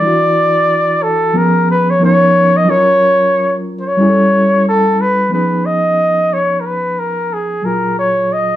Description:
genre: soul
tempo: 91 BPM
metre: 4/4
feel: swing 58% on 16ths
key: unclear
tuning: A4 = 440 Hz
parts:
  - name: warm flugelhorn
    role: melody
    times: 0.0-8.6 s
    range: G#4 to D#5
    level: -12 LUFS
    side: equal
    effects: none
  - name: mellow reed electric piano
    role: accompaniment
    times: 0.0-8.6 s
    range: A#2 to A#4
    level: -16 LUFS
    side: equal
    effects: fast tremolo
room: wet studio reverb, RT60 0.6 s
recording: band playing live in one room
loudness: -11 LUFS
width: side -13 dB against mid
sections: 0.0-5.3 A section; 5.3-8.6 B section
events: none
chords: 0.0 Dadd9; 1.3 C#7; 2.0 C#13; 2.7 F#maj7; 4.0 A7; 5.3 C#9; 7.6 F#maj9

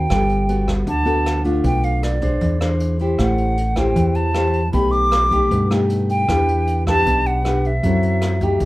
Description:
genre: bossa nova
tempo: 155 BPM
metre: 4/4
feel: straight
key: E minor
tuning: A4 = 445 Hz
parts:
  - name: hollow concert flute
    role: melody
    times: 0.0-8.6 s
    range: D5 to D6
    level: -21 LUFS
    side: equal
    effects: none
  - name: nylon-string guitar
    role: accompaniment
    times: 0.0-8.7 s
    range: B2 to C5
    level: -20 LUFS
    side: left 1 dB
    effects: none
  - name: fingered electric bass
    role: bass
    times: 0.0-8.7 s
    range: G1 to G2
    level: -20 LUFS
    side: equal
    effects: none
  - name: jazz brush drum kit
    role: drums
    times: 0.1-8.7 s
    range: hi-hat, kick drum, rim click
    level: -28 LUFS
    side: equal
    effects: none
room: moderate small room reverb, RT60 0.6 s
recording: rough home demo mix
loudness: -16 LUFS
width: side -18 dB against mid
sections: 0.0-8.7 A section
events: none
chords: 0.1 Gmaj9; 1.6 Bm7b5; 2.4 E7b13; 3.2 Am7; 4.7 B7alt; 6.3 Em7; 7.8 F#m7b5

